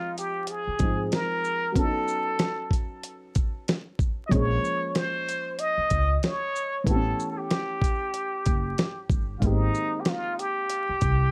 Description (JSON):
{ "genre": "hip hop, jazz-hop", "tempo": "94 BPM", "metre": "4/4", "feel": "swing 58% on 16ths", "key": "unclear", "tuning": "A4 = 440 Hz", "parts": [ { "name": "trumpet with plunger mute", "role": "melody", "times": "0.0-11.3 s", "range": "Eb4 to D#5", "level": "-30 LUFS", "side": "equal", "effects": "analog delay" }, { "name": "dark baby grand piano", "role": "accompaniment", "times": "0.0-11.3 s", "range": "Eb3 to G5", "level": "-34 LUFS", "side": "equal", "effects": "none" }, { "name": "dusty soul sampler-style drum kit", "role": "drums", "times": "0.2-11.2 s", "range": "hi-hat, kick drum, shaker, snare drum", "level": "-29 LUFS", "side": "equal", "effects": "none" }, { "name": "upright bass", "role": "bass", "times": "0.7-11.3 s", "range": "Gb1 to Db2", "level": "-29 LUFS", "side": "equal", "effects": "none" } ], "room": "light reverb", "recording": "dark, warm production, vinyl crackle", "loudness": "-27 LUFS", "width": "mono", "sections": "0.0-11.3 A section", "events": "none", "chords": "0.0 Fm9; 1.8 B9; 4.3 Bbm9; 6.9 A9; 9.4 Abmaj9" }